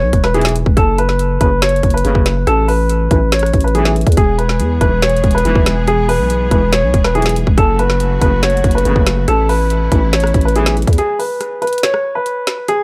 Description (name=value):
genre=hip hop, trap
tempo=141 BPM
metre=4/4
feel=half-time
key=unclear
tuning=A4 = 437 Hz
part: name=dark baby grand piano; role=melody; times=0.0-12.8 s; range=G#4 to C#5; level=-19 LUFS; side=equal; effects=tape echo
part: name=growling 808-style bass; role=bass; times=0.0-11.0 s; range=E1 to E2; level=-18 LUFS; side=equal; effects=none
part: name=trap drum kit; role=drums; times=0.1-12.8 s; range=hi-hat, kick drum, rim click, snare drum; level=-18 LUFS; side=equal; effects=none
part: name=mellow brass ensemble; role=stabs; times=0.3-10.9 s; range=A1 to E3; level=-26 LUFS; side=equal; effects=tape echo
part: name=bright symphonic string section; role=sustained chords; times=4.2-11.0 s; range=B2 to G#4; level=-28 LUFS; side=equal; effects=none
room=studio ambience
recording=dry, gritty hardware recording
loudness=-14 LUFS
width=mono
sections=0.0-11.0 A section; 11.0-12.8 B section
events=break 11.0-12.8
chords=0.0 E; 0.8 F#m; 2.5 Asus2; 4.2 E; 7.6 F#m; 9.3 Asus2; 11.0 N.C.